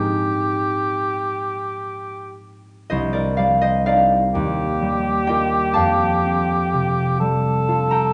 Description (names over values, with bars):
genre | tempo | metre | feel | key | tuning
classical, impressionist duo for cor anglais and harp | 39-43 BPM (dotted quarters) | 6/8 | rubato | C minor | A4 = 440 Hz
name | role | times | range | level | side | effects
mellow cor anglais | melody | 0.0-8.1 s | G4 to A4 | -23 LUFS | equal | none
concert harp | accompaniment | 0.0-8.1 s | C2 to Bb5 | -22 LUFS | equal | none
room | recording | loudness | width
wet recital hall reverb, RT60 1.7 s | dark, warm production, nothing above 10.3 kHz | -20 LUFS | mono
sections
0.0-2.9 A section; 2.9-8.1 B section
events
none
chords
0.0 Abmaj7; 2.9 Cm9; 4.3 Ebmaj9; 5.8 Fadd9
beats
1.41 | 2.93 4.35 | 5.76 7.21